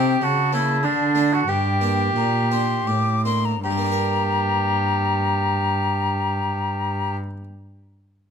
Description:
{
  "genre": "classical, baroque-style sonata movement with continuo",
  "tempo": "77-102 BPM",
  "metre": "3/4",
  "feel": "straight",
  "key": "G minor",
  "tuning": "A4 = 440 Hz",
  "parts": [
    { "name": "bright concert flute", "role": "melody", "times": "0.0-7.2 s", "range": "G5 to D6", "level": "-26 LUFS", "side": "left 6 dB", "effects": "none" },
    { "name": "warm oboe", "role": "second line", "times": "0.0-7.2 s", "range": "D4 to G4", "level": "-23 LUFS", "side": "right 2 dB", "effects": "none" },
    { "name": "harpsichord", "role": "accompaniment", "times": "0.0-7.4 s", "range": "G2 to Bb4", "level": "-28 LUFS", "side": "left 1 dB", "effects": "none" },
    { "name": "rich cello", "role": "bass", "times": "0.0-7.2 s", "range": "G2 to D3", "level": "-24 LUFS", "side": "right 1 dB", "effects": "none" }
  ],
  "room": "light reverb",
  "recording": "close, detailed microphones",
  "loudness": "-19 LUFS",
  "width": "side -7 dB against mid",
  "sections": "0.0-3.6 A section; 3.6-8.3 B section",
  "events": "slowing down 0.0-3.6",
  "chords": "0.2 F#7#9/C#; 0.8 D5; 1.5 Gm"
}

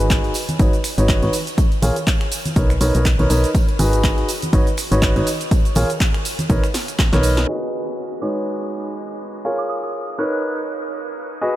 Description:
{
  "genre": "piano house",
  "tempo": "122 BPM",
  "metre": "4/4",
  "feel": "swing 56% on 16ths",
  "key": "unclear",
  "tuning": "A4 = 438 Hz",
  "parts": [
    { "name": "bright upright piano", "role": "riff", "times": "0.0-11.6 s", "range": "G#3 to D#5", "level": "-22 LUFS", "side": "equal", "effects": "sidechain pumping, low-pass filter, tape echo" },
    { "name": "solid FM bass", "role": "bass", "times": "0.0-7.5 s", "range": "G#1 to B1", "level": "-18 LUFS", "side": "equal", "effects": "sidechain pumping" },
    { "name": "punchy analog drum machine", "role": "drums", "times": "0.0-7.5 s", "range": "cabasa, finger snaps, handclaps, hi-hat, snare drum", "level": "-26 LUFS", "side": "right 1 dB", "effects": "none" },
    { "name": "electronic kick drum", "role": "drums", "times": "0.1-7.1 s", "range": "none", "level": "-17 LUFS", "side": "equal", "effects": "none" },
    { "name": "tambourine and congas", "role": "percussion", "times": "0.1-7.5 s", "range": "none", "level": "-29 LUFS", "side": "right 1 dB", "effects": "none" },
    { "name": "soft synth bell", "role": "melody", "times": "8.2-10.4 s", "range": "D#6 to F#6", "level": "-33 LUFS", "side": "right 2 dB", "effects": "chorus, tape echo" }
  ],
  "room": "light reverb, digital ambience",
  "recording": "low-pass filter",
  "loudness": "-16 LUFS",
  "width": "side -14 dB against mid",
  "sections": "0.0-7.5 A section; 7.5-11.6 B section",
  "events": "drum fill 6.7-7.5; band accent 7.4; filter sweep 7.5-11.6",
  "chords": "0.3 C#9sus4/G#; 1.6 A#m7; 2.3 Bmaj9; 3.5 G#m7; 4.3 C#9sus4/G#; 5.5 A#m7; 6.3 Bmaj9; 7.5 G#m7; 8.2 C#9sus4/G#; 9.4 A#m7; 10.2 Bmaj9"
}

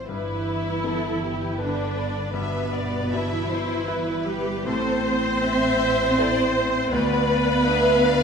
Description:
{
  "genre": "cinematic",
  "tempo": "80 BPM",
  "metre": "3/4",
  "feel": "rubato",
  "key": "A minor",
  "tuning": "A4 = 440 Hz",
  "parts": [
    { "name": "rich studio violin section", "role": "melody", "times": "0.0-8.2 s", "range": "B4 to F5", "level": "-35 LUFS", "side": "left 3 dB", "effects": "none" },
    { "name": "warm studio violin section", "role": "second line", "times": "0.0-8.2 s", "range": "G4 to E5", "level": "-31 LUFS", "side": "left 2 dB", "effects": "none" },
    { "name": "clear concert grand piano", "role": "accompaniment", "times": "0.0-8.2 s", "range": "D2 to C5", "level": "-30 LUFS", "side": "left 2 dB", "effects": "none" },
    { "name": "rich studio double bass section", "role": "bass", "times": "0.0-8.2 s", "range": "G1 to D2", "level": "-31 LUFS", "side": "right 1 dB", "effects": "none" },
    { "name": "rich studio viola section", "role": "accompaniment", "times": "0.1-8.2 s", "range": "B3 to C5", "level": "-24 LUFS", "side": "equal", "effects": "none" },
    { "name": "warm studio cello section", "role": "bass", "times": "0.1-8.2 s", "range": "B2 to C4", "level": "-28 LUFS", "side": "right 2 dB", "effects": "none" }
  ],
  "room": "wet scoring stage reverb, RT60 1.7 s",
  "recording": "minimal, uncompressed stereo recording",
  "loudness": "-21 LUFS",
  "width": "side -6 dB against mid",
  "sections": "0.0-8.2 A section",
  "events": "none",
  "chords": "0.1 G; 2.3 Em/G; 4.7 Am; 6.9 Dm"
}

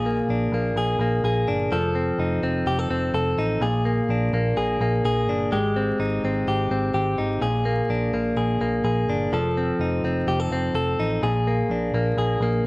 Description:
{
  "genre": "jangly indie pop",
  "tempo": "126 BPM",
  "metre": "4/4",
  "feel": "straight",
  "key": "unclear",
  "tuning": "A4 = 439 Hz",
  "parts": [
    { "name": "direct-recorded clean electric guitar", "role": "arpeggios", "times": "0.0-12.7 s", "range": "Bb2 to A4", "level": "-22 LUFS", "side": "left 1 dB", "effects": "spring reverb" },
    { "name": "vintage muted fingered electric bass", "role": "bass", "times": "0.0-12.7 s", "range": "F1 to Bb1", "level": "-26 LUFS", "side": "equal", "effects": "none" }
  ],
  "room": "little or no reverb",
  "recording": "recorded outdoors, with no room sound, vinyl crackle",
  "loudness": "-20 LUFS",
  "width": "side -24 dB against mid",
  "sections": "0.0-12.7 A section",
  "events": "none",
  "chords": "0.0 Bb7; 1.7 F7; 3.6 Bb7; 5.5 Abmaj7; 7.4 Bb7; 9.3 F7; 11.2 Bb7"
}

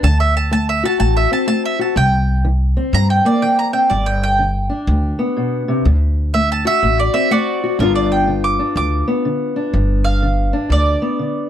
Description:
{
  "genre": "acoustic country blues, solo or duo",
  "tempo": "124 BPM",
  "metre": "4/4",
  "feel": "swing 64% on 8ths",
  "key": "unclear",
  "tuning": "A4 = 440 Hz",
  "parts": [
    { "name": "mandolin", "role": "melody", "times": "0.0-11.5 s", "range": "F#4 to D6", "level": "-18 LUFS", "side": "right 2 dB", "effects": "none" },
    { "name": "fingerpicked steel-string acoustic guitar", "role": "accompaniment", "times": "0.0-11.5 s", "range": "G2 to F#4", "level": "-19 LUFS", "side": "left 3 dB", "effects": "none" },
    { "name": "upright bass", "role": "bass", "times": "0.0-10.9 s", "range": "G1 to G2", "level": "-16 LUFS", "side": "equal", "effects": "none" }
  ],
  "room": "little or no reverb",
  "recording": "dry, close 1970s-style studio recording",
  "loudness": "-14 LUFS",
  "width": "side -10 dB against mid",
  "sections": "0.0-7.8 A section; 7.8-11.5 A section",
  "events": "mandolin solo 0.0-7.8, 7.8-11.5",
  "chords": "0.0 D7; 2.0 C7; 3.9 G; 5.9 D7; 7.8 G7"
}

